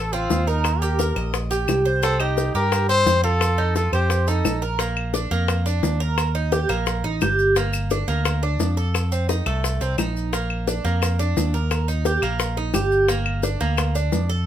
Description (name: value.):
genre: latin, Cuban son and guajira.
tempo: 174 BPM.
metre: 4/4.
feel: straight.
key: Bb major.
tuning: A4 = 440 Hz.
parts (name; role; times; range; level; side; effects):
warm trumpet; melody; 0.0-4.6 s; Eb4 to C5; -23 LUFS; left 2 dB; none.
Cuban tres; arpeggios; 0.0-14.5 s; A3 to Eb5; -24 LUFS; right 3 dB; none.
picked electric bass; bass; 0.0-14.4 s; G1 to G2; -23 LUFS; equal; none.
bongos; percussion; 0.1-14.3 s; none; -26 LUFS; left 6 dB; none.
maracas; percussion; 0.1-14.5 s; none; -34 LUFS; left 2 dB; none.
claves; percussion; 0.6-14.0 s; none; -31 LUFS; left 5 dB; none.
room: light reverb.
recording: minimal, uncompressed stereo recording.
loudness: -19 LUFS.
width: side -10 dB against mid.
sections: 0.0-4.8 A section; 4.8-14.5 B section.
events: none.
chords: 0.0 Dm7 (rootless); 0.6 Eb; 2.0 Cm7; 3.4 F7; 4.8 Bb; 6.2 Eb; 7.6 Gm7; 8.9 F7; 10.3 Bb; 11.7 Eb; 13.1 Gm7.